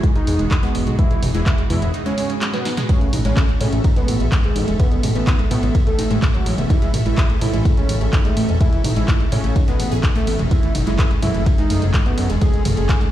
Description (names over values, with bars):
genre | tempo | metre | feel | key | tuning
melodic techno | 126 BPM | 4/4 | straight | unclear | A4 = 440 Hz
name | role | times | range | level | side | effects
evolving wavetable pad | sustained chords | 0.0-13.1 s | F#3 to E5 | -30 LUFS | left 2 dB | ensemble chorus, built-in reverb, sidechain pumping
wide unison pluck | arpeggios | 0.0-13.1 s | G#3 to G#4 | -26 LUFS | right 2 dB | sidechain pumping, ping-pong delay
swarming drone | drone | 0.1-13.1 s | G#2 to D#3 | -32 LUFS | equal | none
electronic kick drum | drums | 0.0-13.0 s | none | -17 LUFS | equal | none
punchy analog drum machine | drums | 0.0-13.1 s | handclaps, hi-hat, ride cymbal, snare drum, toms | -26 LUFS | right 1 dB | sidechain pumping on hats, sidechain pumping on toms, sidechain pumping on cymbals
fat analog lead | melody | 0.2-13.0 s | F#3 to G#4 | -25 LUFS | right 1 dB | lush chorus, ping-pong delay
fat analog bass | bass | 0.3-12.9 s | E1 to A2 | -20 LUFS | equal | sidechain pumping
room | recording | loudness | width
digital ambience | played on a big sound system in a bare room, large studio reverb | -15 LUFS | side -12 dB against mid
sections
0.0-13.1 A section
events
break 1.9-2.9; drum fill 2.4-2.9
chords
0.0 E; 2.9 A; 10.5 F#m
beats
0.03 0.51 | 0.99 1.46 1.94 2.42 | 2.89 3.37 3.84 4.32 | 4.80 5.27 5.75 6.22 | 6.70 7.18 7.65 8.13 | 8.61 9.08 9.56 10.03 | 10.51 10.99 11.46 11.94 | 12.41 12.89